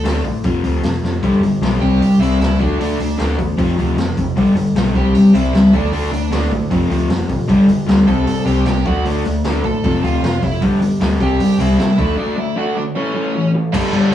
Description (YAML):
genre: punk rock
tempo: 153 BPM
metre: 4/4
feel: straight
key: unclear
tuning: A4 = 441 Hz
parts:
  - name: dark smooth lead guitar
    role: melody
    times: 0.0-14.1 s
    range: C#4 to A5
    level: -24 LUFS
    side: right 4 dB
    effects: overdrive
  - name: crunchy overdriven guitar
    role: riff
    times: 0.0-14.1 s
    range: F2 to D4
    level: -16 LUFS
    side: left 3 dB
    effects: none
  - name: picked electric bass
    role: bass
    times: 0.0-14.1 s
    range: F1 to C3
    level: -21 LUFS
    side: right 1 dB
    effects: none
  - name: raw garage drum kit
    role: drums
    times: 0.1-14.1 s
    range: crash cymbal, hi-hat, kick drum, snare drum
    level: -22 LUFS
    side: equal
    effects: none
  - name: raw garage guitar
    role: riff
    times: 1.2-14.1 s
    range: F2 to D4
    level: -20 LUFS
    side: right 3 dB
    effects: overdrive
  - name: heavy high-gain guitar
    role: riff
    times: 13.7-14.1 s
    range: G2 to D4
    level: -23 LUFS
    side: right 1 dB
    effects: distortion
room: wet studio reverb, RT60 0.7 s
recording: band playing live in one room, cassette tape, small room ambience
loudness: -13 LUFS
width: side -11 dB against mid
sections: 0.0-13.7 A section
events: drum fill 1.0; break 12.2-13.7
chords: 0.4 F5; 1.2 G; 1.8 C; 2.6 D5; 3.6 F5; 4.4 G; 4.9 C; 5.7 D5; 6.7 F; 7.5 G5; 8.1 C5; 8.9 D; 9.8 F; 10.6 G5; 11.2 C; 12.0 D; 13.0 A